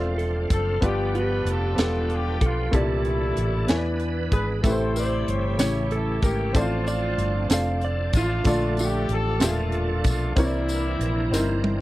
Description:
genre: slow gospel.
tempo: 63 BPM (dotted quarters).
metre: 6/8.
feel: straight.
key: unclear.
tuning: A4 = 441 Hz.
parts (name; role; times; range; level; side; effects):
clean lap steel guitar; melody; 0.0-11.6 s; E4 to F5; -30 LUFS; right 2 dB; none.
warm horn section; melody; 0.0-11.6 s; G3 to D5; -31 LUFS; left 2 dB; none.
warm upright piano; accompaniment; 0.0-11.8 s; G2 to G#5; -28 LUFS; left 1 dB; none.
bright tonewheel organ; sustained chords; 0.0-11.8 s; C3 to B4; -33 LUFS; right 3 dB; fast rotary speaker, overdrive, chorus vibrato.
hollow-body short-scale fingered electric bass; bass; 0.0-11.8 s; E1 to E2; -26 LUFS; equal; none.
tight funk drum kit; drums; 0.2-11.8 s; hi-hat, kick drum, snare drum, toms; -23 LUFS; equal; none.
tambourine; percussion; 4.6-11.6 s; none; -37 LUFS; left 5 dB; none.
room: little or no reverb.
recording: dry, close 1970s-style studio recording.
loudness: -21 LUFS.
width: side -16 dB against mid.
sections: 0.0-11.8 A section.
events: drum fill 11.3-11.8.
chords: 0.0 Dm9; 0.8 G7; 2.7 C13; 3.7 E7; 4.6 Am7; 5.6 A7; 6.5 Dm7; 8.5 Bbmaj7; 10.4 C9.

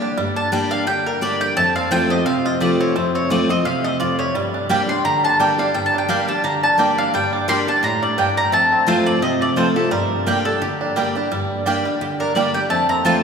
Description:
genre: bluegrass.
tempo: 172 BPM.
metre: 4/4.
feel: swing 55% on 8ths.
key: G minor.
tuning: A4 = 440 Hz.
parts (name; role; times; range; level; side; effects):
picked steel-string acoustic guitar; accompaniment; 0.0-13.2 s; F2 to G4; -21 LUFS; equal; none.
bluegrass banjo; arpeggios; 0.0-13.2 s; G3 to G4; -24 LUFS; right 2 dB; none.
mandolin; melody; 0.4-13.2 s; G4 to C6; -19 LUFS; left 1 dB; none.
mandolin; stabs; 4.7-13.2 s; Bb3 to A5; -24 LUFS; right 2 dB; none.
room: wet church reverb, RT60 3.5 s.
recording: recorded in a church or concert hall.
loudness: -16 LUFS.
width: side -6 dB against mid.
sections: 0.0-13.2 A section.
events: none.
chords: 0.0 Gm; 1.6 F; 4.4 Gm; 8.5 F; 9.9 Gm; 12.7 F.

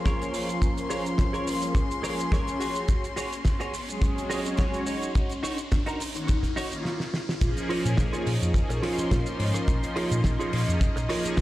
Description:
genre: nu-disco, nu disco.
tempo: 106 BPM.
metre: 4/4.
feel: swing 53% on 16ths.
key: Bb minor.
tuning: A4 = 440 Hz.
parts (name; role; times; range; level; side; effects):
warm analog pad; accompaniment; 0.0-11.4 s; Eb3 to C6; -31 LUFS; equal; chorus, cassette tape, sidechain pumping, tape echo.
dark studio string section; sustained chords; 0.0-11.4 s; Db4 to C6; -36 LUFS; left 3 dB; sidechain pumping.
riser; sound effects; 0.8-7.4 s; none; -38 LUFS; left 2 dB; none.
direct-recorded clean electric guitar; riff; 0.1-11.4 s; Eb4 to Db5; -33 LUFS; right 2 dB; ensemble chorus, vintage 12-bit sampler grit.
damped 70s drum kit; drums; 0.1-11.4 s; crash cymbal, hi-hat, ride cymbal, rim click, shaker, snare drum; -34 LUFS; right 1 dB; none.
kick drum; drums; 0.1-11.4 s; none; -25 LUFS; equal; none.
hollow-body short-scale fingered electric bass; bass; 7.4-11.4 s; Bb1 to Bb2; -28 LUFS; equal; tube saturation.
room: light reverb, small room ambience.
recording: played on a big sound system in a bare room, stone room reverb.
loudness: -24 LUFS.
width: side -16 dB against mid.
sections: 0.0-7.4 A section; 7.4-11.4 B section.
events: build-up 0.0-7.4; riser 0.8-7.4; drum fill 6.8-7.4; stop 6.8-7.4; drop 7.4-11.4.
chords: 0.0 Bbm7; 2.6 Gbsus2; 4.9 Ebm7; 7.4 Bbm7.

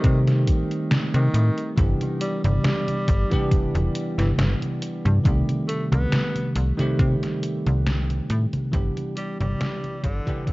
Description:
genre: vaporwave.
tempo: 69 BPM.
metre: 4/4.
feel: swing 54% on 16ths.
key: G major.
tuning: A4 = 440 Hz.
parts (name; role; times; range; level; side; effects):
breathy tenor saxophone; melody; 0.0-10.5 s; D3 to B3; -32 LUFS; equal; tape echo.
bell-like tine electric piano; accompaniment; 0.0-10.5 s; C3 to G4; -27 LUFS; right 1 dB; lush chorus.
slap-like FM bass; bass; 0.0-10.5 s; E1 to C3; -21 LUFS; equal; tube saturation.
detuned 8-bit digital drum machine; drums; 0.0-10.5 s; congas, hi-hat, snare drum; -26 LUFS; equal; overdrive, gated reverb.
electronic kick drum; drums; 0.0-10.5 s; none; -22 LUFS; equal; overdrive.
room: digital ambience.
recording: cassette tape, nothing above 7.8 kHz.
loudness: -20 LUFS.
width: side -21 dB against mid.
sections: 0.0-10.5 A section.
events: fade-out 6.4-10.5.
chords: 0.0 Cm6; 1.8 G6; 5.3 Cm6; 8.7 G6.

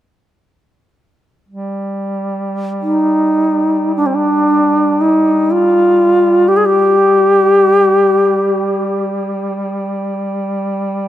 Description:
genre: caucasian folk.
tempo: free time.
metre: none.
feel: none.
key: unclear.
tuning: A4 = 440 Hz.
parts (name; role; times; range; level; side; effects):
mellow duduk; drone; 1.5-11.1 s; G3; -20 LUFS; equal; none.
bright reedy long shakuhachi; melody; 2.8-9.0 s; C4 to Ab4; -11 LUFS; equal; tape echo.
room: light reverb.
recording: close, detailed microphones.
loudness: -11 LUFS.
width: side -12 dB against mid.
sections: 1.5-11.1 A section.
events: none.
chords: none.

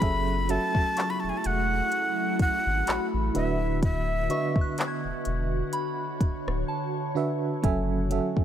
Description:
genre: contemporary R&B.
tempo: 63 BPM.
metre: 4/4.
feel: swing 54% on 16ths.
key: F# minor.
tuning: A4 = 438 Hz.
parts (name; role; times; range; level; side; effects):
breathy bright jazz flute; melody; 0.0-4.7 s; E5 to B5; -29 LUFS; left 1 dB; tape echo.
FM electric piano with tremolo; accompaniment; 0.0-8.4 s; D3 to G#5; -31 LUFS; right 4 dB; none.
ethereal airy pad; sustained chords; 0.0-8.4 s; D3 to C#5; -32 LUFS; equal; ensemble chorus, built-in reverb, sidechain pumping.
warm sub bass; bass; 0.0-8.4 s; D1 to A1; -30 LUFS; equal; none.
smooth R&B drum kit; drums; 0.0-8.4 s; handclaps, hi-hat, kick drum, rim click; -27 LUFS; equal; none.
soft synth bell; texture; 1.0-8.1 s; A5 to G#6; -37 LUFS; left 1 dB; chorus, tape echo.
room: little or no reverb.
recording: none.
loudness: -24 LUFS.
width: side -10 dB against mid.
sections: 0.0-8.4 A section.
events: silent gap 6.7-7.6.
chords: 0.0 F#m9; 3.4 D6; 7.6 F#m9.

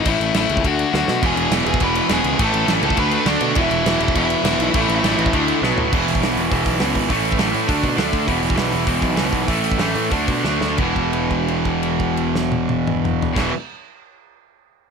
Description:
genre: punk rock.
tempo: 172-205 BPM.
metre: 4/4.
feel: straight.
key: unclear.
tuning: A4 = 441 Hz.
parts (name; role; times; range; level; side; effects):
dark smooth lead guitar; melody; 0.0-5.6 s; D4 to B5; -23 LUFS; left 1 dB; overdrive, digital delay.
cranked stack guitar; riff; 0.0-13.5 s; E2 to D4; -22 LUFS; left 15 dB; overdrive.
fuzz picked electric bass; bass; 0.1-13.5 s; E1 to B2; -24 LUFS; equal; overdrive.
loose indie drum kit; drums; 0.1-13.4 s; crash cymbal, hi-hat, kick drum, snare drum, toms; -23 LUFS; equal; none.
distorted electric guitar; riff; 1.2-13.5 s; E2 to D4; -22 LUFS; right 17 dB; overdrive.
room: light reverb.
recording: none.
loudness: -16 LUFS.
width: side -6 dB against mid.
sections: 0.0-5.9 A section; 5.9-10.8 B section; 10.8-13.6 C section.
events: drum fill 0.9, 5.6, 10.4-10.8; slowing down 8.3-10.8; held note 10.8-13.4.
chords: 0.1 A; 0.6 D; 1.2 E; 2.4 A; 3.0 D5; 3.6 E5; 4.7 A5; 5.3 D5; 5.6 B5; 5.9 E5; 7.1 A5; 7.7 D5; 8.3 E5; 9.5 A5; 10.1 D5; 10.8 E5.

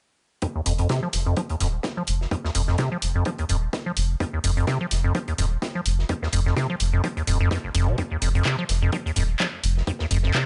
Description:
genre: acid house.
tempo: 127 BPM.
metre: 4/4.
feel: swing 56% on 16ths.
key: unclear.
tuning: A4 = 445 Hz.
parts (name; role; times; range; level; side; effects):
acid bass, square; riff; 0.4-10.5 s; F1 to F3; -27 LUFS; equal; sidechain pumping, tape echo.
electronic kick drum; drums; 0.4-10.4 s; none; -33 LUFS; equal; high-pass filter on kick, high-pass filter on room.
modern studio drum kit; drums; 0.4-10.5 s; hi-hat, snare drum; -39 LUFS; equal; sidechain pumping on hats, high-pass filter on hats, high-pass filter on snare, high-pass filter on room.
round analog bass; bass; 0.7-10.3 s; Eb1 to F1; -26 LUFS; equal; sidechain pumping.
punchy analog drum machine; drums; 0.7-10.4 s; handclaps, hi-hat; -30 LUFS; equal; none.
room: studio reverb.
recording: nothing above 10.9 kHz.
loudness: -24 LUFS.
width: mono.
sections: 0.4-10.5 A section.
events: filter sweep on acid bass 0.4-10.5; filter sweep on analog synth bass 0.4-10.5.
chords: 0.4 F5.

